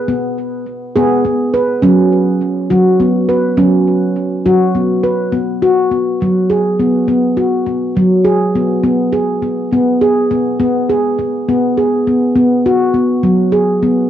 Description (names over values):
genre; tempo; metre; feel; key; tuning
world meditative, meditative tuned percussion; 68 BPM (dotted quarters); 6/8; straight; unclear; A4 = 440 Hz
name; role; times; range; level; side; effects
handpan; solo; 0.0-14.1 s; F#3 to B4; -11 LUFS; equal; cassette tape, tape echo
room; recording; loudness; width
wet small room reverb, RT60 0.5 s; home recording on cassette; -11 LUFS; side -10 dB against mid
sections
0.0-5.3 A section; 5.3-14.1 B section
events
none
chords
0.0 G#m/B; 1.8 F#5; 5.3 B5; 8.8 G#m/B; 12.4 B5